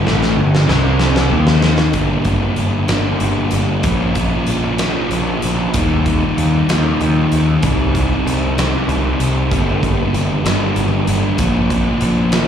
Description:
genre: quiet-loud alternative rock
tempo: 64 BPM (dotted quarters)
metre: 6/8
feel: straight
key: G minor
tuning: A4 = 440 Hz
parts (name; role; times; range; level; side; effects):
- thick fuzz guitar; riff; 0.0-12.5 s; G2 to Eb4; -17 LUFS; equal; distortion
- fuzz picked electric bass; bass; 0.0-12.5 s; G1 to Eb2; -17 LUFS; equal; overdrive
- big rock drum kit; drums; 0.1-12.5 s; hi-hat, kick drum, snare drum; -20 LUFS; equal; none
room: studio ambience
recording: live gig heard through the venue's PA, club reverb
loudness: -13 LUFS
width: side -8 dB against mid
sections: 0.0-2.0 A section; 2.0-12.5 B section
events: drum fill 0.1-2.0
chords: 0.0 G5; 0.7 C5; 1.3 Eb5; 2.0 Gm; 3.8 Bbm; 5.7 Eb; 7.6 Cm; 9.5 Gm; 11.4 Bbm

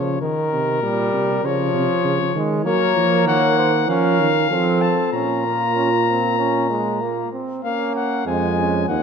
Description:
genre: classical, imitative canzona for brass ensemble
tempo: 97 BPM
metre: 4/4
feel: straight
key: Bb minor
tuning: A4 = 440 Hz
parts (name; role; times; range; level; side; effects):
- warm cornet; melody; 0.0-9.0 s; Bb4 to Bb5; -22 LUFS; left 8 dB; none
- bright trombone; accompaniment; 0.0-9.0 s; Eb3 to Db4; -23 LUFS; right 2 dB; none
- warm tuba; bass; 0.0-9.0 s; Eb2 to Gb3; -22 LUFS; right 3 dB; none
- mellow flugelhorn; second line; 2.7-9.0 s; C4 to Db5; -24 LUFS; right 5 dB; none
room: wet scoring stage reverb, RT60 1.8 s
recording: dark, warm production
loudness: -17 LUFS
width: side -6 dB against mid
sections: 0.0-7.6 A section; 7.6-9.0 B section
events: none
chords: 0.2 Eb; 1.4 Db; 2.7 Gb; 3.9 Bbm/F; 4.5 F; 5.1 Bbm

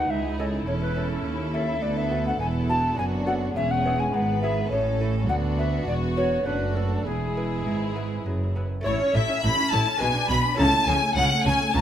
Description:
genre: classical, baroque-style concerto movement with solo episodes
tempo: 104 BPM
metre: 3/4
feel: straight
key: A major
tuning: A4 = 440 Hz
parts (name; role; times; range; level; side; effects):
- clear chamber violin section; melody; 0.0-11.8 s; F#4 to B5; -31 LUFS; left 2 dB; none
- mellow alto recorder; melody; 0.0-11.8 s; G#4 to B5; -28 LUFS; left 1 dB; none
- rich chamber violin section; second line; 0.0-11.8 s; B3 to B5; -31 LUFS; left 1 dB; none
- lute; accompaniment; 0.0-11.8 s; D2 to C#5; -34 LUFS; right 1 dB; none
- rich chamber viola section; accompaniment; 0.0-11.8 s; G#3 to E4; -32 LUFS; equal; none
- rich chamber cello section; bass; 0.0-11.8 s; C#2 to C#3; -29 LUFS; right 1 dB; none
- warm chamber double bass section; bass; 0.0-11.8 s; E1 to D#2; -28 LUFS; right 1 dB; none
room: moderate recital hall reverb, RT60 1.6 s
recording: none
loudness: -22 LUFS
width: side -10 dB against mid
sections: 0.0-8.9 A section; 8.9-11.8 B section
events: none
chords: 0.1 A; 1.8 Bm7; 3.6 E; 4.7 A; 5.3 Bm; 7.1 E; 8.9 A; 10.0 G#dim/B; 10.6 A/C#

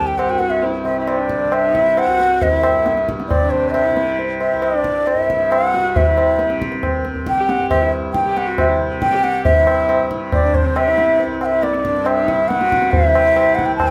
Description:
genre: indian classical, Hindustani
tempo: 137 BPM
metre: 4/4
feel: straight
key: C raga yaman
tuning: A4 = 439 Hz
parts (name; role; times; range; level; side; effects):
- bright reedy bansuri; melody; 0.0-13.9 s; C5 to A5; -19 LUFS; equal; plate reverb
- dark sarangi; second line; 0.0-13.9 s; C4 to G4; -27 LUFS; equal; none
- tanpura; drone; 0.0-13.9 s; C2 to C3; -27 LUFS; equal; none
- tabla; percussion; 0.2-13.9 s; none; -22 LUFS; equal; none
room: wet small room reverb, RT60 0.5 s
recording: none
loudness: -17 LUFS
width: mono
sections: 0.0-9.5 A section; 9.5-13.9 B section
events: speeding up 0.0-13.9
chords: none

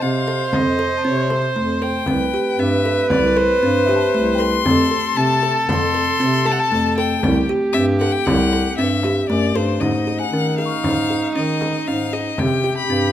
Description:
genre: contemporary instrumental, chamber music in an uneven meter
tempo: 116 BPM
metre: 5/4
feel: straight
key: unclear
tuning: A4 = 441 Hz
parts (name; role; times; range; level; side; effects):
- clear violin; melody; 0.0-13.1 s; C5 to C6; -22 LUFS; left 7 dB; none
- warm viola; second line; 0.0-13.1 s; Eb4 to C5; -22 LUFS; right 3 dB; none
- kalimba; arpeggios; 0.0-13.1 s; A3 to A4; -22 LUFS; right 1 dB; none
- dark bass clarinet; bass; 0.0-13.1 s; C2 to Eb3; -22 LUFS; left 1 dB; none
- celesta; texture; 0.0-4.9, 10.2-12.4 s; Eb5 to F6; -32 LUFS; left 5 dB; none
- frame drum; percussion; 0.5-12.6 s; none; -27 LUFS; left 2 dB; none
room: moderate concert hall reverb, RT60 1.9 s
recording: close, detailed microphones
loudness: -16 LUFS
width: side -11 dB against mid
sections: 0.0-9.8 A section; 9.8-13.1 B section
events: none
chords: 0.0 F; 2.1 C; 4.7 F; 7.2 C; 9.8 Absus4; 12.4 C5

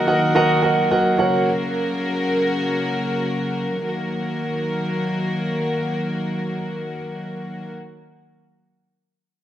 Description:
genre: pop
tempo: free time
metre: none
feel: none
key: Eb minor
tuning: A4 = 440 Hz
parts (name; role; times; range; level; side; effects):
- warm concert grand piano; accompaniment; 0.0-1.5 s; Eb3 to Gb5; -17 LUFS; right 1 dB; none
- warm studio string section; sustained chords; 0.0-7.7 s; Db3 to Bb4; -22 LUFS; equal; none
room: moderate lush hall reverb, RT60 1.7 s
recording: dark, warm production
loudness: -19 LUFS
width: side -11 dB against mid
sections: 0.0-3.9 A section; 3.9-9.0 B section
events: slowing down 0.0-3.9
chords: 0.0 Ebm; 1.2 Gb; 3.9 Ebm

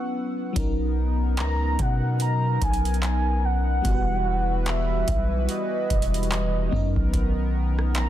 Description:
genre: contemporary R&B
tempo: 73 BPM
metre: 4/4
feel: swing 58% on 16ths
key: B major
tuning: A4 = 441 Hz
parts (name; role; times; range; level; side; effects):
- FM electric piano with soft pad layer; accompaniment; 0.0-8.1 s; F#3 to B4; -32 LUFS; left 2 dB; chorus, tremolo
- chorused pulse-width pad; sustained chords; 0.0-8.1 s; D#3 to E6; -31 LUFS; right 1 dB; none
- long sustained 808-style bass; bass; 0.6-8.1 s; E1 to B2; -24 LUFS; equal; none
- booming analog drum machine; drums; 0.6-8.1 s; handclaps, hi-hat, kick drum, rim click; -27 LUFS; equal; none
- warm velvety synth lead; melody; 1.4-8.1 s; D#5 to A#5; -29 LUFS; right 1 dB; chorus, ping-pong delay
room: little or no reverb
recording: dense, heavily limited modern master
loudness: -22 LUFS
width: side -12 dB against mid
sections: 0.6-8.1 A section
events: break 0.0-0.6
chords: 0.0 F#7sus4; 0.6 Bmaj9; 3.8 Emadd9; 6.7 Bmaj9

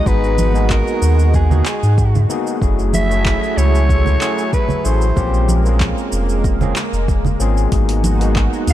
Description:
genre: sunset chillout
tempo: 94 BPM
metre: 4/4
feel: straight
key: unclear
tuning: A4 = 440 Hz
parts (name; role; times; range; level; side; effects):
- growling soprano saxophone; melody; 0.0-8.7 s; G#4 to E5; -23 LUFS; left 1 dB; tape echo
- lush unison pad; sustained chords; 0.0-8.7 s; F#3 to A#5; -24 LUFS; equal; chorus, vintage 12-bit sampler grit
- overdriven tine electric piano; accompaniment; 0.1-8.7 s; G#3 to G#4; -23 LUFS; moving between left 8 dB and right 8 dB; auto-pan, tape echo
- warm sub bass; bass; 0.1-8.7 s; E#1 to G#2; -15 LUFS; equal; none
- electronic kick drum; drums; 0.1-8.5 s; none; -19 LUFS; equal; overdrive
- smooth R&B drum kit; drums; 0.1-8.7 s; handclaps, hi-hat, shaker; -26 LUFS; equal; overdrive
- congas; percussion; 0.4-8.2 s; none; -24 LUFS; right 4 dB; none
room: digital ambience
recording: dark, warm production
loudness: -13 LUFS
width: side -13 dB against mid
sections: 0.0-8.7 A section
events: none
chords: 0.0 G#m9; 2.6 F#m9; 5.2 A#m9; 7.7 G#m9

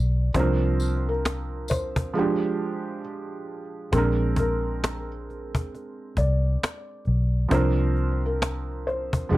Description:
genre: lo-fi hip hop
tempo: 67 BPM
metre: 4/4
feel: swing 63% on 16ths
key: unclear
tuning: A4 = 439 Hz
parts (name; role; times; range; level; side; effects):
- felt-muted upright piano; melody; 0.0-9.4 s; Bb4 to D5; -32 LUFS; left 2 dB; low-pass filter
- felt-muted upright piano; accompaniment; 0.0-9.4 s; F3 to Bb4; -28 LUFS; right 4 dB; cassette tape, low-pass filter
- vintage muted fingered electric bass; bass; 0.0-9.4 s; F1 to C2; -24 LUFS; equal; none
- cajon; drums; 0.3-9.4 s; none; -26 LUFS; left 1 dB; none
- tambourine; percussion; 0.8-1.9 s; none; -40 LUFS; left 6 dB; none
room: light reverb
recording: cassette tape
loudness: -22 LUFS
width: side -17 dB against mid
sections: 0.0-3.9 A section; 3.9-9.4 B section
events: break 2.1-3.9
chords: 0.3 C9sus4; 2.1 Fm69; 3.9 Bb9; 7.5 C9sus4

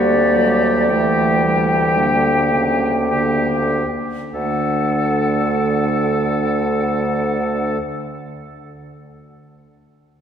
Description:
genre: classical, slow romantic movement for wind quintet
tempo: 45-59 BPM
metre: 4/4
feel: rubato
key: D major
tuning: A4 = 440 Hz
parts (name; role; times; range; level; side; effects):
- bright concert flute; melody; 0.0-7.8 s; D5 to G5; -22 LUFS; left 4 dB; none
- bright oboe; second line; 0.0-7.8 s; G4 to A4; -23 LUFS; left 1 dB; none
- clear French horn; accompaniment; 0.0-7.8 s; C#3 to G3; -24 LUFS; left 1 dB; none
- clear clarinet; accompaniment; 0.0-7.8 s; G3 to Bb3; -22 LUFS; right 4 dB; none
- warm bassoon; bass; 0.0-7.8 s; D2; -22 LUFS; right 1 dB; none
room: wet church reverb, RT60 3.9 s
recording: recorded in a church or concert hall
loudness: -15 LUFS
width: side -8 dB against mid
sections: 0.0-4.3 A section; 4.3-8.9 B section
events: slowing down 0.0-4.3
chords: 0.0 Gm/D; 4.3 D

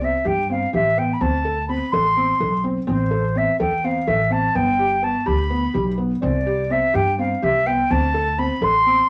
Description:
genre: contemporary instrumental, chamber music in an uneven meter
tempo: 251 BPM (eighths)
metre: 7/8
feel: straight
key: C major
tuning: A4 = 440 Hz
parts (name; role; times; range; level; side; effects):
- reedy concert flute; melody; 0.0-9.1 s; C5 to C6; -22 LUFS; equal; none
- felt-muted upright piano; arpeggios; 0.0-9.0 s; B3 to A4; -26 LUFS; equal; none
- upright bass; bass; 0.0-9.0 s; G1 to G2; -26 LUFS; equal; none
room: wet studio reverb, RT60 0.6 s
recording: vinyl crackle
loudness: -20 LUFS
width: mono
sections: 0.0-9.1 A section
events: none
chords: 0.0 C5; 1.2 D5; 2.9 Am; 4.6 G; 6.2 Csus2; 7.9 D5

